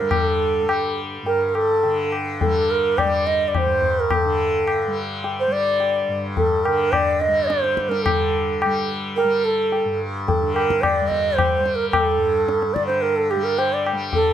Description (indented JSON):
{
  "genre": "indian classical, Hindustani",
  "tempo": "107 BPM",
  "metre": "7/4",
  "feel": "straight",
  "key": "G raga darbari",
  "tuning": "A4 = 440 Hz",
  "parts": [
    { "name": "bansuri", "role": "melody", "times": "0.0-14.3 s", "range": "G4 to Eb5", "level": "-20 LUFS", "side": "right 2 dB", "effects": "plate reverb" },
    { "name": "tanpura", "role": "drone", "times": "0.0-14.3 s", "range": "G2 to G3", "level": "-26 LUFS", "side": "left 1 dB", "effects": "none" },
    { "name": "tabla", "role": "percussion", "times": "0.1-14.3 s", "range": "none", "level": "-23 LUFS", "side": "left 5 dB", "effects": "none" }
  ],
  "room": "moderate studio ambience, RT60 0.5 s",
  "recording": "none",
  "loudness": "-18 LUFS",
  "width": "side -10 dB against mid",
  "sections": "0.0-8.0 A section; 8.0-14.3 B section",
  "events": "speeding up 0.0-14.3",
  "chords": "none"
}